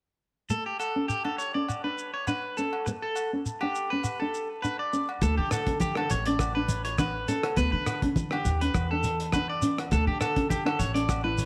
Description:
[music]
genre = highlife guitar band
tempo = 102 BPM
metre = 4/4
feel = swing 54% on 16ths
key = unclear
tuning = A4 = 442 Hz
[part]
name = nylon-string guitar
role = accompaniment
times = 0.5-11.5 s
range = A3 to E4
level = -34 LUFS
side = equal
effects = none
[part]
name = electric guitar at the edge of break-up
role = arpeggios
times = 0.5-11.5 s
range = G4 to D5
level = -32 LUFS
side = equal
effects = spring reverb, analog delay
[part]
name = shekere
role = percussion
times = 0.5-11.5 s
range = none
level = -36 LUFS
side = equal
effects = none
[part]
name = agogo bells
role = percussion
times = 0.8-11.2 s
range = none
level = -42 LUFS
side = equal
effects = none
[part]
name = upright bass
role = bass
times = 5.2-11.5 s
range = A1 to D3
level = -33 LUFS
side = equal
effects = none
[part]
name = cloth-damped thuddy drum kit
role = drums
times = 5.2-11.5 s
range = hi-hat, kick drum, rim click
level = -35 LUFS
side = equal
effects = none
[part]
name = congas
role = percussion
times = 5.2-11.5 s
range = none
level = -36 LUFS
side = equal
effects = none
[sound]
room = light reverb, small room ambience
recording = none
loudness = -28 LUFS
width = mono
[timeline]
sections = 0.5-5.2 A section; 5.2-11.5 B section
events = none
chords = 0.5 D5; 2.9 G; 4.0 Bm9/C#; 5.2 D5; 7.6 G/D; 8.7 E5; 9.9 Dsus2

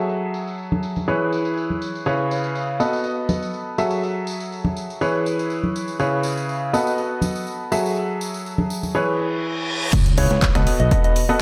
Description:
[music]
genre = piano house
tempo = 122 BPM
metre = 4/4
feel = straight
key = E major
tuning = A4 = 441 Hz
[part]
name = clear upright piano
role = riff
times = 0.0-11.4 s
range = C#3 to E5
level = -24 LUFS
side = equal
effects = vintage 12-bit sampler grit, sidechain pumping, tape echo
[part]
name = tambourine and congas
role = percussion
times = 0.1-8.9 s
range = none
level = -30 LUFS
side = equal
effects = none
[part]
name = reverse cymbal and sub drop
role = sound effects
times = 9.2-11.4 s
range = none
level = -30 LUFS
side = equal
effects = none
[part]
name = fingered electric bass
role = bass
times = 9.9-10.9 s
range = B1 to C#2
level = -23 LUFS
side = equal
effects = sidechain pumping
[part]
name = dusty soul sampler-style drum kit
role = drums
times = 9.9-11.3 s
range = hi-hat, snare drum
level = -39 LUFS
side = equal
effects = none
[part]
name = electronic kick drum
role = drums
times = 9.9-11.0 s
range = none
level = -21 LUFS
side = equal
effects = none
[part]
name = house drum kit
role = drums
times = 9.9-11.3 s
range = crash cymbal, finger snaps, handclaps, hi-hat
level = -29 LUFS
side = equal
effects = none
[part]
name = soft struck synth lead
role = melody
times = 10.2-11.2 s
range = C#5 to D#5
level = -27 LUFS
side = equal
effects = chorus, tape echo
[sound]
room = moderate lush hall reverb, RT60 2.1 s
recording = dreamy mix soaked in reverb, low-pass filter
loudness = -22 LUFS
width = mono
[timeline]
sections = 0.0-9.9 A section; 9.9-11.4 B section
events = filter sweep 0.0-9.9; reverse cymbal 9.2-9.9; drop 9.9-11.4; impact 9.9-11.4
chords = 0.0 F#m9; 1.1 E6; 2.1 C#m7; 2.8 B7; 3.8 F#m9; 5.0 E6; 6.0 C#m7; 6.7 B7; 7.7 F#m9; 8.9 E6; 9.9 C#m7; 10.7 B7

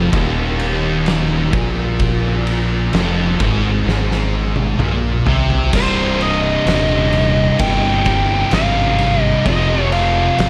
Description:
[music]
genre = stoner and doom metal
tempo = 64 BPM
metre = 4/4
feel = straight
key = C minor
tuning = A4 = 440 Hz
[part]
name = high-gain distorted guitar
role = riff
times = 0.0-10.5 s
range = C2 to F4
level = -27 LUFS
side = equal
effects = distortion
[part]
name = thick fuzz guitar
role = riff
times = 0.0-10.5 s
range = C2 to F3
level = -23 LUFS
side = equal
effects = distortion
[part]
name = thick fuzz guitar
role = riff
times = 0.0-10.5 s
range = C2 to F3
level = -25 LUFS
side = equal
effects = none
[part]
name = growling fingered electric bass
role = bass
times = 0.0-10.5 s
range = C1 to C2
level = -22 LUFS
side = equal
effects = overdrive
[part]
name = oversized low-tuned drum kit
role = drums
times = 0.1-10.5 s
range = crash cymbal, kick drum, ride cymbal, snare drum, toms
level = -23 LUFS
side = equal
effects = none
[part]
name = fuzz lead guitar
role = melody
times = 5.8-10.5 s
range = C5 to G5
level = -21 LUFS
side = equal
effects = wah, distortion, analog delay
[sound]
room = studio ambience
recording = none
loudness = -16 LUFS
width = mono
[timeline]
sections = 0.0-5.7 A section; 5.7-10.5 B section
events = drum fill 3.9-5.7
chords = 0.0 F5; 5.7 Cm; 9.5 Fm

